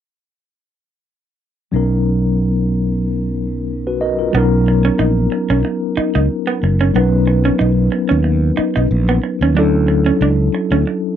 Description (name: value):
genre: R&B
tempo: 92 BPM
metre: 4/4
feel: swing 56% on 16ths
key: B major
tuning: A4 = 440 Hz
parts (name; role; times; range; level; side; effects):
- mellow tine electric piano; accompaniment; 1.7-11.2 s; F#3 to D#5; -17 LUFS; left 2 dB; medium stereo tremolo
- fretless electric bass; bass; 1.7-10.8 s; F#1 to D#2; -16 LUFS; equal; none
- electric guitar through a small old amp; second line; 4.3-10.9 s; B3 to D#4; -20 LUFS; right 5 dB; vibrato effect
room: little or no reverb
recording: dry, close 1970s-style studio recording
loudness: -13 LUFS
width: side -10 dB against mid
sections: 1.7-4.3 A section; 4.3-11.2 B section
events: none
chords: 1.7 Bmaj9; 9.5 Dmaj9